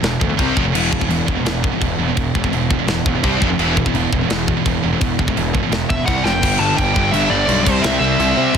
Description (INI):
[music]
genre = heavy metal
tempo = 169 BPM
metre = 4/4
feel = straight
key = E minor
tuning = A4 = 441 Hz
[part]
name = scooped high-gain guitar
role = riff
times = 0.0-8.6 s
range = E2 to C4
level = -22 LUFS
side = right 12 dB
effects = distortion
[part]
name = sludgy distorted guitar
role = riff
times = 0.0-8.6 s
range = E2 to C4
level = -22 LUFS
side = left 10 dB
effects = overdrive
[part]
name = fuzz picked electric bass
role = bass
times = 0.0-8.6 s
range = E1 to C3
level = -22 LUFS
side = equal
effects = overdrive
[part]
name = tight metal drum kit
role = drums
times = 0.0-8.6 s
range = china cymbal, crash cymbal, kick drum, snare drum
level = -20 LUFS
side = equal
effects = none
[part]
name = fuzz guitar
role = riff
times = 0.7-8.6 s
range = E2 to C4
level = -24 LUFS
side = equal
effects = distortion
[part]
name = nasal lead guitar with a parked wah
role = melody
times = 5.9-8.6 s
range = C5 to A5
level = -19 LUFS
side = equal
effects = overdrive
[sound]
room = studio reverb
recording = dense, heavily limited modern master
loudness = -15 LUFS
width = side -7 dB against mid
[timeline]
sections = 0.0-6.4 A section; 6.4-8.6 B section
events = drum fill 6.2; half time 6.4-8.6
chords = 0.4 C5; 0.6 F5; 0.7 E5; 3.2 C5; 3.4 F5; 3.6 E5; 6.1 C5; 6.2 F5; 6.4 G5; 7.7 C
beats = 0.03 0.39 | 0.74 1.10 1.45 1.81 | 2.17 2.52 2.88 3.23 | 3.59 3.94 4.30 4.65 | 5.01 5.36 5.71 6.07 | 6.42 6.78 7.13 7.48 | 7.84 8.19 8.54